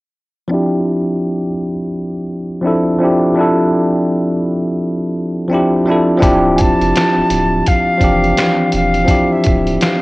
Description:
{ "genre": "lo-fi hip hop", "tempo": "84 BPM", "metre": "4/4", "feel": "swing 61% on 16ths", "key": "D minor", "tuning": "A4 = 440 Hz", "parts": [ { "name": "bell-like tine electric piano", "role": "accompaniment", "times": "0.5-10.0 s", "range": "E3 to A4", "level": "-14 LUFS", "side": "equal", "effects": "medium stereo tremolo, cassette tape, low-pass filter" }, { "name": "warm sub bass", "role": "bass", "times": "6.2-9.8 s", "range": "D1 to F1", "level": "-21 LUFS", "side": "equal", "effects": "none" }, { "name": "lo-fi sampler-style drum kit", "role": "drums", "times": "6.2-10.0 s", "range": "finger snaps, hi-hat, kick drum, snare drum", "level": "-17 LUFS", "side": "equal", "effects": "vintage 12-bit sampler grit" }, { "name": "mellow concert flute", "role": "melody", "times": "6.5-10.0 s", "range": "E5 to A5", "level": "-17 LUFS", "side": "left 1 dB", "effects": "low-pass filter, cassette tape" } ], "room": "light reverb, digital ambience", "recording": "home recording on cassette", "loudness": "-12 LUFS", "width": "side -21 dB against mid", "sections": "0.5-6.2 A section; 6.2-10.0 B section", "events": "filter sweep on tine electric piano 0.5-6.2", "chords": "0.5 Dm11", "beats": "| 0.51 1.22 1.94 2.65 | 3.37 4.08 4.79 5.51 | 6.22 6.94 7.65 8.37 | 9.08 9.79" }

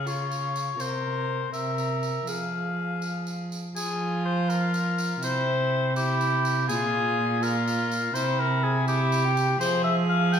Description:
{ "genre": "classical, renaissance-style consort dance", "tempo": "82 BPM (dotted quarters)", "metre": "6/8", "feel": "straight", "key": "F harmonic minor", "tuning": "A4 = 440 Hz", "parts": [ { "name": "clear oboe", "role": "melody", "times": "0.0-10.4 s", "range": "G4 to G5", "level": "-27 LUFS", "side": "left 4 dB", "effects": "none" }, { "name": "rich violin", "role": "second line", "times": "0.0-10.4 s", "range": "E4 to Bb4", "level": "-32 LUFS", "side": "right 5 dB", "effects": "none" }, { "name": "dark cello", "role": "bass", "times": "0.0-10.4 s", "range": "Bb2 to F3", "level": "-27 LUFS", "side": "right 1 dB", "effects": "none" }, { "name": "tambourine", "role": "percussion", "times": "0.1-10.4 s", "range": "none", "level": "-39 LUFS", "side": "right 4 dB", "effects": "none" } ], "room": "wet recital hall reverb, RT60 1.5 s", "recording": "none", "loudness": "-24 LUFS", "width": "side -8 dB against mid", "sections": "0.0-3.8 A section; 3.8-10.4 A section", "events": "none", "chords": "0.0 Db; 0.8 Bbsus2/C; 2.3 Fm; 5.2 C; 6.7 Bb5; 8.2 C; 9.6 Fm", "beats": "0.07 | 0.80 1.54 | 2.28 3.02 | 3.76 4.50 | 5.23 5.96 | 6.69 7.42 | 8.15 8.88 | 9.61 10.33" }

